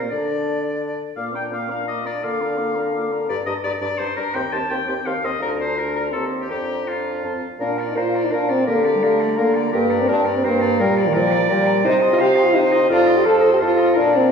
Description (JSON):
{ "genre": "quick classical-period movement for wind quintet", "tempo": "169 BPM", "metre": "3/4", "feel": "straight", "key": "Bb major from 3.3 s", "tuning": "A4 = 440 Hz", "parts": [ { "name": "mellow hollow silver concert flute", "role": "melody", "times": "0.0-14.3 s", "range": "Bb4 to D6", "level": "-29 LUFS", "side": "left 6 dB", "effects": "none" }, { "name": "mellow French horn", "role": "accompaniment", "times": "0.0-14.3 s", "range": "Eb3 to A4", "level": "-21 LUFS", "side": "equal", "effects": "none" }, { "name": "mellow bassoon", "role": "bass", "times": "0.0-14.3 s", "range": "D2 to D3", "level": "-22 LUFS", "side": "equal", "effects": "none" }, { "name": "clear oboe", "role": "second line", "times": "0.1-14.3 s", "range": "F4 to A5", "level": "-26 LUFS", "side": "left 2 dB", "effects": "none" }, { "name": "warm clarinet", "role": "accompaniment", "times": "0.1-14.3 s", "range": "D4 to F5", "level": "-27 LUFS", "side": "right 4 dB", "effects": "none" } ], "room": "wet recital hall reverb, RT60 1.6 s", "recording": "heard from further back in the room, studio reverb", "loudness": "-17 LUFS", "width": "side -6 dB against mid", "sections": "0.0-7.6 A section; 7.6-14.3 B section", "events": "none", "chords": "0.1 N.C.; 1.2 Bb; 2.2 Bb/D; 3.3 Gm; 4.3 Cm/Eb; 5.4 Bb/D; 6.1 Cm/Eb; 6.5 Bb/F; 7.2 F; 7.6 Bb; 8.7 Bb/D; 9.7 Gm; 10.8 Gm/Bb; 11.8 Cm; 12.9 F7; 14.0 Bb" }